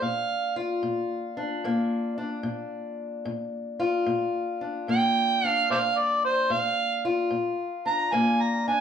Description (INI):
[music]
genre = acoustic country blues, solo or duo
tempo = 74 BPM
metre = 4/4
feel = swing 66% on 8ths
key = Bb major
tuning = A4 = 440 Hz
[part]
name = overdriven harmonica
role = melody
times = 0.0-8.8 s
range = C5 to Bb5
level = -23 LUFS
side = right 3 dB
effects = none
[part]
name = fingerpicked steel-string acoustic guitar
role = accompaniment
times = 0.0-8.8 s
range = Bb2 to F4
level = -27 LUFS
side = left 3 dB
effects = none
[sound]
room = moderate large studio reverb, RT60 0.7 s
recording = band playing live in one room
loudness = -24 LUFS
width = side -8 dB against mid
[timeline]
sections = 0.0-8.8 A section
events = none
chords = 0.0 Bb